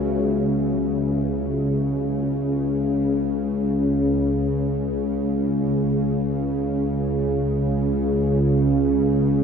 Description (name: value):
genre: ambient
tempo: free time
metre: none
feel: none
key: unclear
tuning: A4 = 442 Hz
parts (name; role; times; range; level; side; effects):
- bowed-like drone; drone; 0.0-9.4 s; C#2 to C#3; -20 LUFS; equal; built-in reverb
room: wet huge ambient reverb, RT60 7.5 s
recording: none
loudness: -20 LUFS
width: side -6 dB against mid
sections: 0.3-9.4 A section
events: none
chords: none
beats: free time